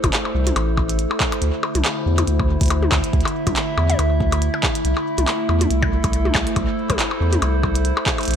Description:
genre	IDM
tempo	140 BPM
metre	4/4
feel	swing 56% on 16ths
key	A minor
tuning	A4 = 440 Hz
part	warbly tape-like pad	sustained chords	0.0-8.4 s	D3 to E5	-23 LUFS	equal	chorus, built-in reverb
part	round analog bass	bass	0.0-8.4 s	G1 to E2	-20 LUFS	equal	tube saturation
part	electronic kick drum	drums	0.0-8.2 s	none	-23 LUFS	equal	none
part	glitchy drum kit	drums	0.0-8.4 s	handclaps, hi-hat, percussion blips, toms	-23 LUFS	left 1 dB	tape echo
room	light reverb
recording	none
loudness	-17 LUFS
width	side -8 dB against mid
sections	0.0-8.4 A section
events	none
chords	0.0 Am; 1.4 Dsus2; 4.8 Am/C

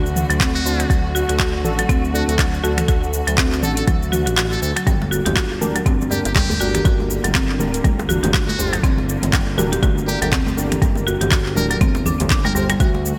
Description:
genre	afro house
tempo	121 BPM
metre	4/4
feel	swing 58% on 16ths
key	G harmonic minor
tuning	A4 = 439 Hz
part	clear symphonic string section	sustained chords	0.0-13.2 s	D3 to F#4	-31 LUFS	equal	sidechain pumping
part	smooth synth bass	bass	0.0-13.1 s	D1 to D2	-26 LUFS	equal	sidechain pumping
part	afro-pop drum kit	drums	0.1-13.2 s	finger snaps, handclaps, hi-hat, shaker, toms	-26 LUFS	equal	none
part	buzzing marimba with hard mallets	arpeggios	0.3-12.9 s	F#3 to G4	-26 LUFS	equal	sidechain pumping, digital delay
part	electronic kick drum	drums	0.4-12.9 s	none	-21 LUFS	equal	none
part	trumpet with metal mute	melody	0.6-12.6 s	F#4 to Bb4	-31 LUFS	equal	digital delay
part	warm analog keys	stabs	0.7-12.7 s	D4 to C5	-30 LUFS	equal	chorus, sidechain pumping, digital delay
part	congas	percussion	4.9-13.0 s	none	-30 LUFS	equal	none
part	djembe	percussion	5.0-13.0 s	none	-32 LUFS	equal	none
room	light reverb, small room reverb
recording	bright 1980s-style digital production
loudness	-18 LUFS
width	mono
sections	0.0-13.2 A section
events	kick drops out 4.4-4.9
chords	0.0 D; 4.9 Gm

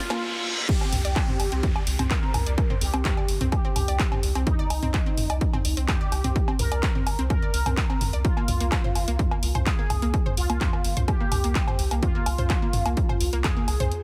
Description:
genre	melodic techno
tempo	127 BPM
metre	4/4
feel	straight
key	C minor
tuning	A4 = 441 Hz
part	resonant sweep polysynth	melody	0.0-14.0 s	Eb4 to Bb4	-34 LUFS	equal	chorus, cassette tape, sidechain pumping, digital delay
part	round analog bass	bass	0.0-13.9 s	G1 to C2	-28 LUFS	equal	sidechain pumping, high-pass filter
part	riser, reverse cymbal and downlifter	sound effects	0.0-4.5 s	none	-36 LUFS	equal	none
part	analog pluck	arpeggios	0.1-13.9 s	Bb3 to D5	-36 LUFS	equal	chorus, sidechain pumping, digital delay
part	punchy analog drum machine	drums	0.1-14.0 s	crash cymbal, handclaps, hi-hat, snare drum, toms, woodblock	-31 LUFS	equal	high-pass filter on snare, high-pass filter on hats, high-pass filter on toms, high-pass filter on perc, high-pass filter on cymbals
part	electronic kick drum	drums	0.7-13.5 s	none	-27 LUFS	equal	overdrive
room	light reverb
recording	heavily compressed radio sound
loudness	-24 LUFS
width	mono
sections	0.7-14.0 A section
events	drum fill 0.0; riser 0.0-0.7; reverse cymbal 0.0-0.7; drop 0.7-14.0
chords	0.0 Bb5; 0.7 Csus2; 8.2 Bbsus2

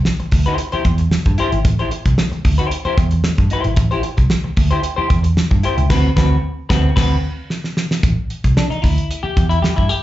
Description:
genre	funk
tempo	113 BPM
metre	4/4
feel	straight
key	A dorian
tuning	A4 = 440 Hz
part	vintage muted picked electric bass	bass	0.0-9.9 s	G#1 to G2	-16 LUFS	equal	none
part	semi-hollow electric guitar	accompaniment	0.1-10.0 s	C4 to C5	-21 LUFS	left 3 dB	lush chorus, slapback echo
part	damped 70s drum kit	drums	0.1-10.0 s	crash cymbal, hi-hat, kick drum, snare drum	-17 LUFS	equal	none
room	light reverb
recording	live gig heard through the venue's PA, club reverb, nothing above 7.8 kHz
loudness	-14 LUFS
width	side -14 dB against mid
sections	0.0-8.0 A section; 8.0-10.0 B section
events	band accent 5.9-8.0; drum fill 7.5-8.0; clean electric guitar solo 8.0-10.0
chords	0.0 Am7 (rootless); 5.9 D6; 8.0 A7(no3) (rootless)

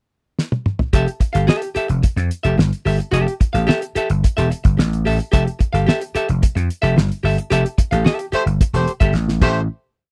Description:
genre	funk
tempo	110 BPM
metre	4/4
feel	straight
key	unclear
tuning	A4 = 439 Hz
part	cloth-damped thuddy drum kit	drums	0.4-9.5 s	crash cymbal, hi-hat, kick drum, snare drum, toms	-19 LUFS	equal	none
part	archtop guitar, miked and amplified	accompaniment	0.9-9.6 s	G4 to F5	-23 LUFS	equal	none
part	vintage slap bass	bass	0.9-9.7 s	E1 to F2	-20 LUFS	equal	none
part	warm horn section	second line	8.3-9.6 s	A3 to C5	-22 LUFS	equal	none
room	little or no reverb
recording	dry, close 1970s-style studio recording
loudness	-18 LUFS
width	mono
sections	0.0-0.9 pickup bar; 0.9-9.7 bridge; 9.7-10.1 final hit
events	drum fill 0.4-0.9, 9.1-9.7; band accent 7.5-9.7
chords	0.0 N.C.; 0.9 Fmaj9; 9.4 Am7

